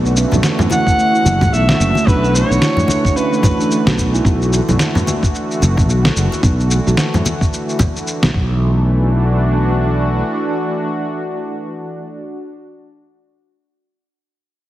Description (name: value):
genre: organic downtempo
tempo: 110 BPM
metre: 4/4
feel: swing 59% on 16ths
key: B minor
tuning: A4 = 440 Hz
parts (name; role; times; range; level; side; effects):
- warm analog pad; sustained chords; 0.0-12.5 s; D3 to F#4; -21 LUFS; equal; chorus, tremolo, sidechain pumping
- steel tongue drum; arpeggios; 0.0-4.2 s; A3 to E4; -20 LUFS; right 2 dB; tape echo
- sustaining fretless electric bass; bass; 0.0-10.2 s; F#1 to B1; -15 LUFS; equal; analog chorus
- electronic shaker and snare drum; drums; 0.1-8.3 s; none; -20 LUFS; equal; small room reverb
- congas; percussion; 0.3-7.9 s; none; -20 LUFS; left 1 dB; none
- warm kamancheh; melody; 0.7-4.0 s; B4 to F#5; -18 LUFS; equal; tape echo
- electronic kick drum; drums; 0.9-8.5 s; none; -16 LUFS; equal; small room reverb
room: light reverb, studio ambience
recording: heavily compressed radio sound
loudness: -13 LUFS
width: side -14 dB against mid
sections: 0.0-8.6 A section; 8.6-13.0 B section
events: none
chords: 0.0 Bm11; 4.2 E5; 8.3 B7sus4; 8.6 Bm7